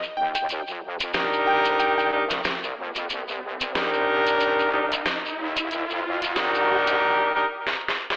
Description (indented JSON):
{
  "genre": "glitch hop",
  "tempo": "92 BPM",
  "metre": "4/4",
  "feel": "swing 57% on 16ths",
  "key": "C minor",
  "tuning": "A4 = 441 Hz",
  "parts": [
    { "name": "plucky unison lead", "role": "melody", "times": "0.0-2.1 s", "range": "G5", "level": "-26 LUFS", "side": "equal", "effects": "digital delay" },
    { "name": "shekere", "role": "percussion", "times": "0.0-7.0 s", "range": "none", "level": "-29 LUFS", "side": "equal", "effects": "none" },
    { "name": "riser", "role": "sound effects", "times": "1.5-7.0 s", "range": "none", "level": "-31 LUFS", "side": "equal", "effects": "none" },
    { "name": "wobble bass", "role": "bass", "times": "0.2-7.0 s", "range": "C2 to F2", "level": "-31 LUFS", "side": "equal", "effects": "chorus, high-pass filter" },
    { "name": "dubstep drum kit", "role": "drums", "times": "0.3-8.2 s", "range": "hi-hat, snare drum", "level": "-27 LUFS", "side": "equal", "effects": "overdrive" },
    { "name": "brilliant horn section", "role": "stabs", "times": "1.1-7.5 s", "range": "D4 to Bb4", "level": "-22 LUFS", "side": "equal", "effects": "digital delay" }
  ],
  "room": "moderate plate reverb, RT60 2.5 s",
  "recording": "high-pass filter, telephone sound",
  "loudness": "-21 LUFS",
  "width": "side -22 dB against mid",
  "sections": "0.0-8.2 A section",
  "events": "build-up 0.0-8.2; riser 1.5-7.0; drum fill 7.7-8.2",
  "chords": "0.0 Cm7"
}